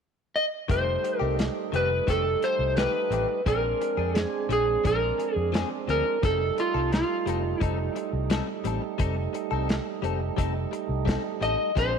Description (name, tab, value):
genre	straight-eighth soul blues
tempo	87 BPM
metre	4/4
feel	straight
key	F mixolydian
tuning	A4 = 439 Hz
part	electric slide guitar	melody	0.4-12.0 s	F4 to Eb5	-26 LUFS	equal	none
part	tonewheel organ	accompaniment	0.7-12.0 s	G3 to Eb4	-32 LUFS	right 14 dB	slow rotary speaker, overdrive
part	direct-recorded clean electric guitar	stabs	0.7-12.0 s	Eb3 to A4	-34 LUFS	left 12 dB	lush chorus, tape echo
part	vintage muted fingered electric bass	bass	0.7-12.0 s	F1 to F2	-30 LUFS	left 1 dB	none
part	warm soul drum kit	drums	0.7-11.9 s	hi-hat, kick drum, snare drum	-28 LUFS	left 1 dB	none
room	light reverb, small room ambience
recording	1960s-style stereo with parts hard left and right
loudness	-24 LUFS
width	side -6 dB against mid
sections	0.7-12.0 A section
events	none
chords	0.0 N.C.; 0.7 F9; 3.5 Bb9; 6.2 F9